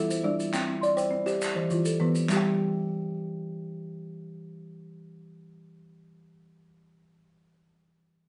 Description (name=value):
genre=southern african traditional, mbira-style interlocking cycle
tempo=137 BPM (dotted quarters)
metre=12/8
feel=straight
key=unclear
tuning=A4 = 440 Hz
part: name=folk marimba with soft mallets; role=arpeggios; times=0.0-6.0 s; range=E3 to C6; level=-33 LUFS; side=equal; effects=none
part: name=kalimba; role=arpeggios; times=0.0-6.0 s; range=E3 to G5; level=-31 LUFS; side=equal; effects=none
part: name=maracas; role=percussion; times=0.1-2.4 s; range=none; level=-43 LUFS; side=equal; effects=none
part: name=group handclap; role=percussion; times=0.5-2.4 s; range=none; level=-37 LUFS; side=equal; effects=none
room=wet studio reverb, RT60 0.6 s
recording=heard from further back in the room, nothing above 10.7 kHz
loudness=-28 LUFS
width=mono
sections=0.0-2.3 A section; 2.3-5.8 B section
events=none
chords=0.0 G5; 0.5 C5; 1.4 E5; 2.3 N.C.